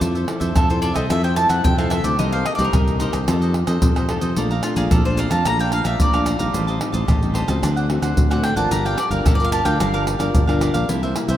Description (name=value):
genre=samba and choro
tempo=110 BPM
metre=4/4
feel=straight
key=F major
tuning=A4 = 439 Hz
part: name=cavaquinho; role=accompaniment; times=0.0-11.4 s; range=D4 to Bb5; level=-28 LUFS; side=right 2 dB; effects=none
part: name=nylon-string guitar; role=accompaniment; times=0.0-11.4 s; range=G2 to Bb4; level=-25 LUFS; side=left 2 dB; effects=none
part: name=modern bright fingered electric bass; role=bass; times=0.0-11.4 s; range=G1 to F2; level=-22 LUFS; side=equal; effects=none
part: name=maracas, surdo, pandeiro and tamborim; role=percussion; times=0.0-11.4 s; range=none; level=-21 LUFS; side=equal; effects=none
part: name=bowl-back mandolin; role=melody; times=0.6-10.0 s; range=F4 to Bb5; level=-24 LUFS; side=equal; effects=none
room=moderate cathedral reverb, RT60 5.2 s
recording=in a vast, echoing space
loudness=-17 LUFS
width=side -12 dB against mid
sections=0.0-11.4 A section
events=mandolin solo 0.0-11.4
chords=0.0 Fmaj7; 2.2 Cm7; 3.3 F7; 4.4 Bbmaj7; 6.5 Am7b5; 7.6 D7; 8.7 Gm7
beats=| 0.01 0.56 1.10 1.65 | 2.19 2.74 3.28 3.83 | 4.37 4.91 5.46 6.00 | 6.54 7.09 7.63 8.17 | 8.71 9.26 9.80 10.35 | 10.89